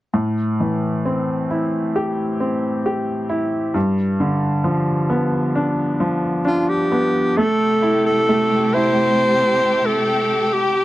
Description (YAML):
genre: pop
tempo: 66 BPM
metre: 4/4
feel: straight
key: A minor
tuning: A4 = 435 Hz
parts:
  - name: bright upright piano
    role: accompaniment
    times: 0.1-10.8 s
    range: G2 to G4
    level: -19 LUFS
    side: equal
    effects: none
  - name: breathy alto saxophone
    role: melody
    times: 6.5-10.8 s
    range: F4 to C5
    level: -17 LUFS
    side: equal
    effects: slapback echo
  - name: rich studio string section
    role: sustained chords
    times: 7.4-10.8 s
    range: C3 to G4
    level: -22 LUFS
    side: left 1 dB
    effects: none
room: light reverb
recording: dry, close 1970s-style studio recording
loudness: -16 LUFS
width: side -16 dB against mid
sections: 0.1-7.4 A section; 7.4-10.8 B section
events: none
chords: 0.1 Am7; 3.8 G7; 7.4 Am7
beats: | 0.14 1.05 1.96 2.86 | 3.75 4.65 5.55 6.46 | 7.37 8.28 9.19 10.09